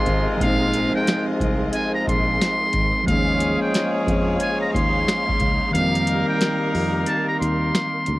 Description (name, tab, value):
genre	hip hop, boom-bap hip-hop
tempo	90 BPM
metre	4/4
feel	swing 62% on 16ths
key	unclear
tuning	A4 = 442 Hz
part	trumpet with metal mute	melody	0.0-8.2 s	F5 to C6	-24 LUFS	equal	cassette tape
part	mellow tine electric piano	accompaniment	0.0-8.2 s	Eb3 to Eb4	-25 LUFS	equal	fast stereo tremolo, cassette tape
part	dark symphonic string section	sustained chords	0.0-8.2 s	C4 to F5	-31 LUFS	left 1 dB	cassette tape
part	warm horn section	stabs	0.0-8.0 s	C3 to Bb4	-26 LUFS	left 1 dB	cassette tape, tape echo
part	fingered electric bass	bass	0.1-8.2 s	Ab1 to F2	-25 LUFS	equal	none
part	booming analog drum machine	drums	0.1-8.2 s	hi-hat, kick drum, snare drum	-25 LUFS	equal	overdrive, cassette tape
room	light reverb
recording	home recording on cassette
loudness	-18 LUFS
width	side -18 dB against mid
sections	0.0-8.2 A section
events	kick muted 5.7-8.2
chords	0.0 Bb9sus4; 3.1 Eb9sus4; 5.7 F9sus4